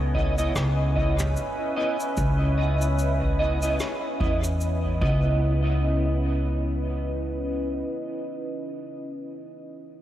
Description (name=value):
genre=ambient dub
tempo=74 BPM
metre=4/4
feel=swing 58% on 16ths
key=C# minor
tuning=A4 = 440 Hz
part: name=deep dark ambient pad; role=sustained chords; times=0.0-9.4 s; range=B3 to G#5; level=-30 LUFS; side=equal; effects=chorus, built-in reverb
part: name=upright bass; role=bass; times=0.0-7.8 s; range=C#2 to E2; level=-24 LUFS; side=equal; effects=none
part: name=clean electric guitar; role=stabs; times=0.1-9.1 s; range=B3 to D#5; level=-30 LUFS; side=right 2 dB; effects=ensemble chorus, dub echo
part: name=electronic kick drum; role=drums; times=0.1-5.2 s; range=none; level=-30 LUFS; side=equal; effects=overdrive
part: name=vintage brush drum kit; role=drums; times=0.4-4.8 s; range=cabasa, rim click, toms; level=-36 LUFS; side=equal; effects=dub echo
room=moderate lush hall reverb, RT60 3.0 s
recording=dreamy mix soaked in reverb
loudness=-22 LUFS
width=side -12 dB against mid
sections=0.0-5.4 A section; 5.4-8.7 B section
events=none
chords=0.0 C#m9